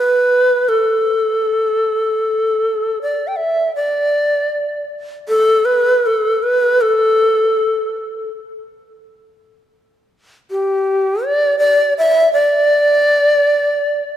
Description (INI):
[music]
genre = japanese traditional, Japanese chamber music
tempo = free time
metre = none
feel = none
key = A suspended pentatonic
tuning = A4 = 438 Hz
[part]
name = breathy bright long shakuhachi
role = solo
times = 0.0-14.2 s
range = G4 to G5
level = -13 LUFS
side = equal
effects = none
[sound]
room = moderate church reverb, RT60 2.8 s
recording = minimal, uncompressed stereo recording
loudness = -13 LUFS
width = side -11 dB against mid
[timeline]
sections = 0.0-3.8 A section; 3.8-14.2 B section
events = none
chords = none